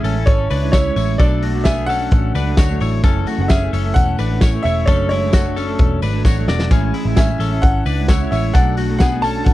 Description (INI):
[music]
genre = jangly indie pop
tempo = 131 BPM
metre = 4/4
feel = straight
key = unclear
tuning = A4 = 440 Hz
[part]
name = bright upright piano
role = melody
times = 0.0-9.5 s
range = C#5 to A5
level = -22 LUFS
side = equal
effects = slapback echo
[part]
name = electric guitar through a small old amp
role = accompaniment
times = 0.0-9.5 s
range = F#2 to F#4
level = -24 LUFS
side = right 5 dB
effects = none
[part]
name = twelve-string electric guitar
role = arpeggios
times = 0.0-9.5 s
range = G#3 to D5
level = -24 LUFS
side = left 8 dB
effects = slapback echo
[part]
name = vintage muted picked electric bass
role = bass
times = 0.0-9.5 s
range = E1 to D2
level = -19 LUFS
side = equal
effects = none
[part]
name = loose indie drum kit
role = drums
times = 0.0-9.5 s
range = hi-hat, kick drum, snare drum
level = -15 LUFS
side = equal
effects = none
[part]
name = tambourine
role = percussion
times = 0.0-9.5 s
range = none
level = -40 LUFS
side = right 22 dB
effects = none
[sound]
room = little or no reverb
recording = dry, close 1970s-style studio recording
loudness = -14 LUFS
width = side -16 dB against mid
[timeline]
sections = 0.0-9.5 A section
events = drum fill 6.3-6.7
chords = 0.0 Amaj7; 1.2 Bm7; 3.0 F#m7; 6.7 Amaj7; 8.5 Bm7